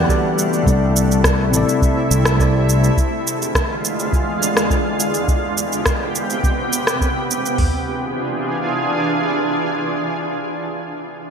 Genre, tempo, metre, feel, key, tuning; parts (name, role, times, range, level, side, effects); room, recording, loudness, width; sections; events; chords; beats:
sunset chillout; 104 BPM; 4/4; straight; A4 = 440 Hz
tine electric piano; accompaniment; 0.0-3.0 s; C3 to D5; -20 LUFS; moving between left 4 dB and right 3 dB; auto-pan, digital delay
shimmering ambient pad; sustained chords; 0.0-10.7 s; E2 to F#5; -20 LUFS; equal; chorus, built-in reverb
fretless electric bass; bass; 0.0-2.9 s; A1 to C2; -17 LUFS; equal
electronic cabasa and rim click; drums; 0.1-7.6 s; -22 LUFS; right 1 dB; gated reverb
soft vintage rhythm box; drums; 0.1-7.7 s; hi-hat, kick drum, toms; -19 LUFS; equal
wet lush hall reverb, RT60 2.4 s; bright 1980s-style digital production; -16 LUFS; side -6 dB against mid
0.0-7.6 A section; 7.6-9.9 B section
0.0 Em11; 0.7 C6; 3.0 E7b9; 5.3 Gadd11/C; 7.6 E7b9
0.09 | 0.66 1.24 1.82 2.40 | 2.97 3.55 4.12 4.70 | 5.28 5.86 6.43 7.01 | 7.59 8.16 8.74 9.32